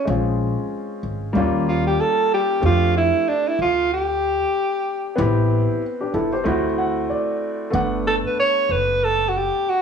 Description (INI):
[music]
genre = hip hop, jazz-hop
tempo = 94 BPM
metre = 4/4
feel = swing 58% on 16ths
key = unclear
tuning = A4 = 440 Hz
[part]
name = clear alto saxophone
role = melody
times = 0.0-9.8 s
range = D4 to C#5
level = -19 LUFS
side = right 1 dB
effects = cassette tape
[part]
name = warm upright piano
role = accompaniment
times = 0.0-9.8 s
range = G3 to F#5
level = -23 LUFS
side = left 1 dB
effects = cassette tape
[part]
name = upright bass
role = bass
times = 0.1-9.5 s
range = F#1 to F2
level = -23 LUFS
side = equal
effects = none
[sound]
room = moderate spring reverb, RT60 1.8 s, small room ambience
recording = home recording on cassette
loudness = -18 LUFS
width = side -7 dB against mid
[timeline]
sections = 0.0-9.8 A section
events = alto saxophone solo 0.0-9.8; upright piano fill 6.5-7.7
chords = 0.1 Bbm7; 1.4 Eb9; 2.6 F69; 5.2 Am7; 6.5 D7; 7.7 Gmaj7